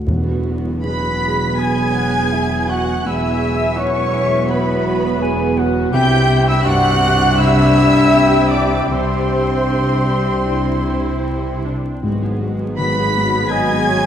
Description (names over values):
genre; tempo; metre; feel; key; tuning
cinematic, emotional film score for orchestra; 76-85 BPM; 4/4; rubato; unclear; A4 = 439 Hz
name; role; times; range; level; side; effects
felt-muted upright piano; accompaniment; 0.0-14.1 s; C2 to F#4; -24 LUFS; equal; none
warm symphonic viola section; accompaniment; 0.1-14.1 s; G#3 to G#4; -25 LUFS; right 3 dB; none
mellow French horn section; sustained chords; 0.1-14.1 s; F#3 to D4; -22 LUFS; equal; none
rich symphonic double bass section; bass; 0.1-14.1 s; E1 to C2; -23 LUFS; equal; none
warm studio cello section; bass; 0.1-14.1 s; E2 to C3; -24 LUFS; equal; none
timpani; percussion; 0.1-1.2 s; E2; -25 LUFS; equal; none
mellow flute section; second line; 0.8-14.1 s; B4 to B5; -22 LUFS; equal; none
warm symphonic violin section; second line; 0.8-14.1 s; B4 to B5; -24 LUFS; right 1 dB; none
warm symphonic violin section; melody; 0.9-14.1 s; B5 to B6; -23 LUFS; equal; none
mellow cor anglais; second line; 0.9-14.1 s; B3 to B4; -24 LUFS; left 3 dB; none
warm clarinet; second line; 1.6-14.1 s; C5 to G#5; -27 LUFS; left 1 dB; none
room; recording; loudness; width
wet cathedral reverb, RT60 4.6 s; in a vast, echoing space, vinyl crackle; -14 LUFS; side -9 dB against mid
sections
0.1-14.1 A section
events
none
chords
0.1 Eadd9; 5.9 Csus2; 12.0 G#m7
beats
| 0.08 0.85 1.59 2.33 | 3.07 3.79 4.51 5.22 | 5.94 6.66 7.40 8.14 | 8.91 9.69 10.47 11.24 | 12.03 12.77 13.52